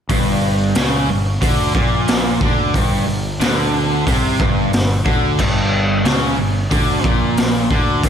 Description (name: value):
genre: hard rock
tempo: 91 BPM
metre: 4/4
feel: straight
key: G minor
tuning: A4 = 440 Hz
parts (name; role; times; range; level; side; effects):
- cranked stack guitar; riff; 0.1-8.1 s; G2 to D3; -20 LUFS; right 9 dB; overdrive, spring reverb, slapback echo
- crunchy overdriven guitar; riff; 0.1-8.1 s; G2 to D3; -20 LUFS; left 8 dB; spring reverb
- fuzz fingered electric bass; bass; 0.1-8.1 s; G1 to D2; -23 LUFS; equal; overdrive
- raw garage drum kit; drums; 0.1-8.1 s; crash cymbal, hi-hat, kick drum, snare drum; -18 LUFS; equal; none
room: light reverb, studio ambience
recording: none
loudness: -14 LUFS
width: side -8 dB against mid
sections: 0.1-8.1 A section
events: none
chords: 0.1 Gm